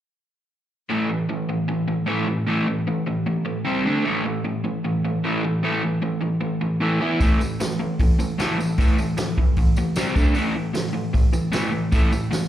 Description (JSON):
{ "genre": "garage rock duo or trio", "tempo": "152 BPM", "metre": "4/4", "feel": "straight", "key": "unclear", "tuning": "A4 = 439 Hz", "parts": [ { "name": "crunchy overdriven guitar", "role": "riff", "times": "0.9-12.5 s", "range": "A2 to E4", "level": "-22 LUFS", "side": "equal", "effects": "slapback echo" }, { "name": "vintage drum kit", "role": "drums", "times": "7.2-12.5 s", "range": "hi-hat, kick drum, snare drum", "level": "-21 LUFS", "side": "equal", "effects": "none" }, { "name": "tambourine", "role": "percussion", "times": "7.2-12.4 s", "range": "none", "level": "-39 LUFS", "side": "right 1 dB", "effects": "none" } ], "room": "small room ambience", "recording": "live gig heard through the venue's PA, club reverb", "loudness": "-20 LUFS", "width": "side -12 dB against mid", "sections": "0.9-12.5 A section", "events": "none", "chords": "0.9 A5; 3.7 C5; 3.9 D5; 4.1 A5; 7.0 E5; 7.2 A5; 10.0 C5; 10.2 D5; 10.3 A5", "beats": "| 0.90 1.30 1.69 2.08 | 2.48 2.87 3.27 3.66 | 4.05 4.45 4.84 5.24 | 5.63 6.02 6.42 6.81 | 7.20 7.60 7.99 8.38 | 8.78 9.17 9.56 9.96 | 10.35 10.74 11.14 11.53 | 11.92 12.32" }